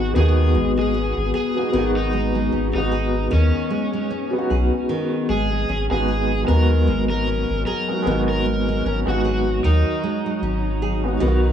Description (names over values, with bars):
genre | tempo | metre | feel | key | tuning
trip hop | 76 BPM | 4/4 | swing 56% on 16ths | G# minor | A4 = 439 Hz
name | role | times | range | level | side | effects
overdriven slide guitar | melody | 0.0-11.5 s | C#4 to A#4 | -25 LUFS | left 2 dB | tape echo
felt-muted upright piano | accompaniment | 0.0-11.5 s | F#3 to F#4 | -24 LUFS | right 1 dB | tremolo, vintage 12-bit sampler grit, tape echo
deep dark ambient pad | sustained chords | 0.0-11.5 s | F#3 to G#4 | -28 LUFS | left 3 dB | chorus, built-in reverb, vintage 12-bit sampler grit
round analog bass | bass | 0.0-11.5 s | G#1 to D#2 | -21 LUFS | equal | none
nylon-string guitar | arpeggios | 0.2-11.5 s | D#3 to G#4 | -28 LUFS | right 4 dB | vintage 12-bit sampler grit, tape echo
room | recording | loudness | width
light reverb, small room ambience | none | -18 LUFS | side -9 dB against mid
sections
0.0-11.5 A section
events
none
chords
0.0 G#m7